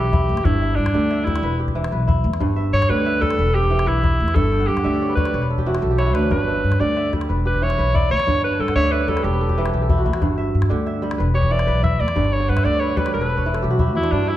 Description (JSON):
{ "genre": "west african traditional, West African string and xylophone music", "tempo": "123 BPM (dotted quarters)", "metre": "12/8", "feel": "straight", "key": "G lydian", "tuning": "A4 = 440 Hz", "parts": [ { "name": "bright alto saxophone", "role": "melody", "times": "0.0-14.4 s", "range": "D4 to E5", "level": "-22 LUFS", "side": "equal", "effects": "none" }, { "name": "kora", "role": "arpeggios", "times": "0.0-14.4 s", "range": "G2 to A5", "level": "-23 LUFS", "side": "right 2 dB", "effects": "none" }, { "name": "upright bass", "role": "bass", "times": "0.0-14.4 s", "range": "E1 to G2", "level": "-21 LUFS", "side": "equal", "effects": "none" }, { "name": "calabash", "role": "percussion", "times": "0.1-14.1 s", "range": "none", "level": "-24 LUFS", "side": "left 2 dB", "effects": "none" } ], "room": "moderate recital hall reverb, RT60 1.5 s", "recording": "dark, warm production", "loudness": "-17 LUFS", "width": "side -13 dB against mid", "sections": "0.0-14.1 A section", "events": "alto saxophone solo 0.0-14.1; kora fill 4.5-6.3, 8.5-10.2, 12.4-14.1; drum fill 5.8-6.3", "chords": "0.5 G5; 1.4 Em; 2.4 G; 3.4 Em; 4.4 G5; 5.3 E5; 6.3 G; 7.3 Em; 8.3 G5; 9.2 Em; 10.2 G5; 11.2 Em; 12.2 G5; 13.1 E5" }